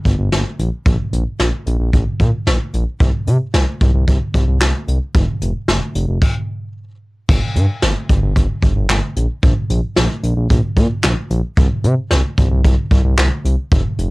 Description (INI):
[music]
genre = synth-pop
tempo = 112 BPM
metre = 4/4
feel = straight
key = unclear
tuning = A4 = 440 Hz
[part]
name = smooth gliding synth bass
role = bass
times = 0.1-14.1 s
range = F1 to C3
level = -16 LUFS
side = equal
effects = none
[part]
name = jazz brush drum kit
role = drums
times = 0.1-14.1 s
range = crash cymbal, handclaps, hi-hat, kick drum, snare drum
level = -16 LUFS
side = equal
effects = cassette tape
[sound]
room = little or no reverb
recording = home recording on cassette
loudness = -14 LUFS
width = side -23 dB against mid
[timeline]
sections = 0.0-7.3 A section; 7.3-14.1 B section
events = stop 6.2-7.3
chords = none